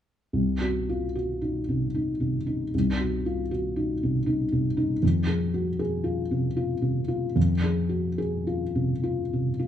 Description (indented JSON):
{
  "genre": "classical",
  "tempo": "77 BPM",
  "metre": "3/4",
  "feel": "uneven beats, rubato",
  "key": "unclear",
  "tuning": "A4 = 440 Hz",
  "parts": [
    { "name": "felt-muted upright piano", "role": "accompaniment", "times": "0.3-9.7 s", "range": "C2 to Ab4", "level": "-24 LUFS", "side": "equal", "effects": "none" }
  ],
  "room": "moderate large studio reverb, RT60 1.2 s",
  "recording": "band playing live in one room",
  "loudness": "-24 LUFS",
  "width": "side -10 dB against mid",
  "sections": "0.3-9.7 A section",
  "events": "none",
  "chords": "0.3 Cdim; 5.0 Fm",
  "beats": "| 0.33 1.14 1.95 | 2.73 3.50 4.26 | 5.02 5.80 6.57 | 7.36 8.18 9.01"
}